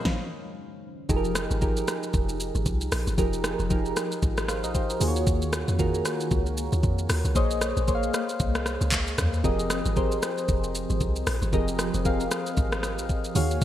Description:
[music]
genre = amapiano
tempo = 115 BPM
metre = 4/4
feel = swing 58% on 16ths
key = F minor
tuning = A4 = 440 Hz
[part]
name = soft electric-piano-like synth keys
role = accompaniment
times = 0.0-13.6 s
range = Eb3 to F5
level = -28 LUFS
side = equal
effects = chorus, phaser
[part]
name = smooth R&B drum kit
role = drums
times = 0.1-13.6 s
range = handclaps, hi-hat, kick drum, rim click, shaker, snare drum, toms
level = -28 LUFS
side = equal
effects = gated reverb
[part]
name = deep log drum bass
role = bass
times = 1.1-13.6 s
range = F1 to F2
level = -28 LUFS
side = equal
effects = none
[sound]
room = light reverb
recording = bright 1980s-style digital production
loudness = -23 LUFS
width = side -12 dB against mid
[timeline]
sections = 0.0-1.1 A section; 1.1-13.6 B section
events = filter sweep on synth keys 0.0-1.1; stop 0.1-1.1; drop 1.1-13.6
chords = 0.0 Bbsus2 (rootless); 1.1 Fm11; 5.0 Ebm11; 7.4 Bbm11; 9.4 Fm11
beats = 0.05 0.57 | 1.09 1.62 2.14 2.66 | 3.18 3.70 4.22 4.75 | 5.27 5.79 6.31 6.83 | 7.36 7.88 8.40 8.92 | 9.44 9.96 10.49 11.01 | 11.53 12.05 12.57 13.10 | 13.62

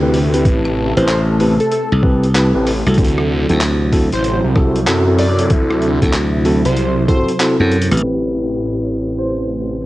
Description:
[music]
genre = glitch hop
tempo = 95 BPM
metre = 4/4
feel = swing 64% on 16ths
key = A dorian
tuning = A4 = 440 Hz
[part]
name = warm analog pad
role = sustained chords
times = 0.0-9.9 s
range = C3 to A4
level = -22 LUFS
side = equal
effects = chorus, sidechain pumping, cassette tape
[part]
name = mellow tine electric piano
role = stabs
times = 0.0-9.9 s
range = C4 to B4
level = -18 LUFS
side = equal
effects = vintage 12-bit sampler grit, sidechain pumping, low-pass filter, cassette tape, tape echo
[part]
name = phased detuned saw bass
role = bass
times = 0.0-9.9 s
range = A1 to F#2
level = -18 LUFS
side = equal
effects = phaser
[part]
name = boom bap sampler-style drum kit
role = drums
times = 0.1-9.9 s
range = crash cymbal, handclaps, hi-hat, rim click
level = -23 LUFS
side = equal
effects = overdrive, cassette tape
[part]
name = electronic kick drum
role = drums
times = 0.5-7.2 s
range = none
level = -14 LUFS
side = equal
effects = overdrive, cassette tape
[part]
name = plucky unison lead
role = melody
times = 1.0-9.5 s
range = A4 to D5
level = -22 LUFS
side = equal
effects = tape echo
[part]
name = glassy slap bass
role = bass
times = 1.0-8.0 s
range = A1 to F#2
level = -15 LUFS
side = equal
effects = none
[sound]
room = light reverb, digital ambience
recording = home recording on cassette, low-pass filter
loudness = -13 LUFS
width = side -17 dB against mid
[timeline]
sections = 0.0-8.0 A section; 8.0-9.9 B section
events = drum fill 7.7-8.0; filter sweep 8.0-9.9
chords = 0.0 Am7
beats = | 0.45 1.09 1.72 2.35 | 2.98 3.61 4.24 4.88 | 5.51 6.14 6.77 7.40 | 8.03 8.66 9.30

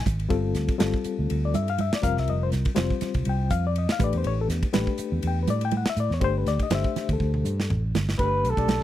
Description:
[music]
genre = electric jazz fusion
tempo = 122 BPM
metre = 4/4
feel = swing 55% on 16ths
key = G mixolydian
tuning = A4 = 440 Hz
[part]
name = reed electric piano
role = accompaniment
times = 0.0-8.8 s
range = G3 to G5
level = -28 LUFS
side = left 8 dB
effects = overdrive, fast tremolo
[part]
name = fingered electric bass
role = bass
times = 0.0-8.8 s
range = F1 to A2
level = -26 LUFS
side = right 1 dB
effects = none
[part]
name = modern studio drum kit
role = drums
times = 0.1-8.8 s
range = hi-hat, kick drum, ride cymbal, snare drum, toms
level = -28 LUFS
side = right 1 dB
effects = none
[part]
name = congas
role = percussion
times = 0.1-8.8 s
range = none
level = -31 LUFS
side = right 7 dB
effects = none
[part]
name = breathy trumpet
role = melody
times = 8.2-8.8 s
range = A4 to B4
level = -24 LUFS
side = right 1 dB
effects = none
[sound]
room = small room reverb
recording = dry, close 1970s-style studio recording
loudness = -22 LUFS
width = side -13 dB against mid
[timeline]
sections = 0.0-8.2 A section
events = drum fill 7.2-8.2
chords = 0.3 G9sus4; 2.0 Fsus24; 4.0 A9sus4; 6.2 Gsus24; 8.2 Gadd9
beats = | 0.31 0.80 1.29 1.79 | 2.28 2.77 3.26 3.75 | 4.25 4.74 5.23 5.72 | 6.21 6.71 7.20 7.69 | 8.19 8.68

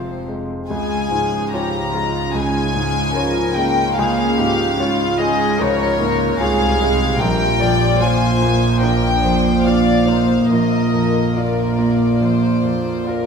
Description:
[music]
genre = cinematic, emotional film score for orchestra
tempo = 73 BPM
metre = 4/4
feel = uneven beats, rubato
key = unclear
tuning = A4 = 440 Hz
[part]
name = warm symphonic violin section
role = second line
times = 0.0-13.3 s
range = F4 to D5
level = -23 LUFS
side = left 5 dB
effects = none
[part]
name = clear grand piano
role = accompaniment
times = 0.0-13.3 s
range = Bb1 to F5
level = -22 LUFS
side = equal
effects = none
[part]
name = dark symphonic viola section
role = accompaniment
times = 0.0-13.3 s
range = F3 to Ab4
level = -23 LUFS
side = right 1 dB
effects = none
[part]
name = dark symphonic double bass section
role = bass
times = 0.0-13.3 s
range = F1 to Db2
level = -24 LUFS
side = right 2 dB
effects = none
[part]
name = warm symphonic cello section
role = bass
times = 0.0-13.3 s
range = F2 to Db3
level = -22 LUFS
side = right 4 dB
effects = none
[part]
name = warm symphonic violin section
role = melody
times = 0.7-13.3 s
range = Db5 to Bb5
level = -22 LUFS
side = left 3 dB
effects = none
[sound]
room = wet scoring stage reverb, RT60 1.4 s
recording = none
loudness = -15 LUFS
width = side -6 dB against mid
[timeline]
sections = 0.0-13.3 A section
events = none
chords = 0.0 Fm; 0.7 Db; 7.2 Bb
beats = | 0.70 1.53 2.34 3.16 | 3.98 4.80 5.60 6.40 | 7.20 8.01 8.82 9.65 | 10.51 11.37 12.22 13.08

